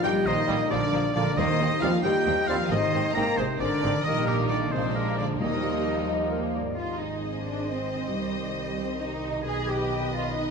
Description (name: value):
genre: cinematic, heroic adventure film score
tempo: 89 BPM (dotted quarters)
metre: 6/8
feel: straight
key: Eb major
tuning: A4 = 440 Hz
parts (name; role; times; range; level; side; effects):
- warm symphonic violin section; melody; 0.0-10.5 s; Bb4 to Bb5; -34 LUFS; left 4 dB; none
- bright silver concert flute; second line; 0.0-6.1 s; G4 to G5; -35 LUFS; left 2 dB; none
- clear oboe; second line; 0.0-6.1 s; Bb4 to Bb5; -31 LUFS; right 2 dB; none
- warm symphonic violin section; second line; 0.0-10.5 s; Bb3 to Eb5; -37 LUFS; left 2 dB; none
- dark symphonic viola section; accompaniment; 0.0-10.5 s; Eb3 to Cb5; -35 LUFS; right 2 dB; none
- mellow French horn section; sustained chords; 0.0-10.5 s; Eb3 to Bb4; -32 LUFS; left 3 dB; none
- concert harp; arpeggios; 0.0-10.5 s; Ab2 to C6; -35 LUFS; left 6 dB; none
- warm symphonic cello section; bass; 0.0-10.5 s; Bb2 to Ab4; -31 LUFS; right 3 dB; none
- rich symphonic double bass section; bass; 0.1-10.5 s; Ab1 to Eb2; -33 LUFS; right 4 dB; none
- bright trombone section; sustained chords; 0.5-6.5 s; Eb3 to C4; -36 LUFS; right 4 dB; none
- timpani; percussion; 1.4-2.0, 5.4-6.0 s; Eb3; -36 LUFS; right 2 dB; none
- mellow clarinet; second line; 6.1-6.8 s; Bb4 to Eb5; -34 LUFS; left 1 dB; none
room: wet scoring stage reverb, RT60 2.0 s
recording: none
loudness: -24 LUFS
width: side -5 dB against mid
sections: 0.0-6.8 A section; 6.8-10.5 B section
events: none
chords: 0.0 Eb/Bb; 0.7 Bb; 1.4 Eb6; 2.7 Ab; 4.0 Eb/Bb; 4.7 Bb7; 5.4 Ebadd9; 6.8 Ab; 8.1 Cm; 9.5 Abm/Cb